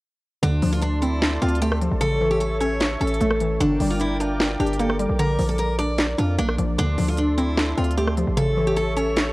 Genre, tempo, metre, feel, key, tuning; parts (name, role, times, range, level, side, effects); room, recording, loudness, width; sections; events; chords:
hip hop, trap; 151 BPM; 4/4; half-time; D minor; A4 = 441 Hz
picked steel-string acoustic guitar; melody; 0.4-9.3 s; D4 to D5; -25 LUFS; equal
hollow square pluck; accompaniment; 0.4-9.3 s; C#3 to D4; -25 LUFS; equal; chorus
warm analog pad; sustained chords; 0.4-9.3 s; A4 to D6; -31 LUFS; right 1 dB; chorus
hard-hitting 808-style bass; bass; 0.4-9.3 s; G1 to F2; -24 LUFS; equal
trap drum kit; drums; 0.4-9.3 s; handclaps, hi-hat, rim click, snare drum; -25 LUFS; equal
little or no reverb; worn, warbling old tape, cassette tape, warbly pitch drift; -19 LUFS; side -20 dB against mid
0.4-9.3 A section
0.4 Dm7; 2.0 A; 3.6 Gm; 5.2 Bb; 6.8 Dm7; 8.4 A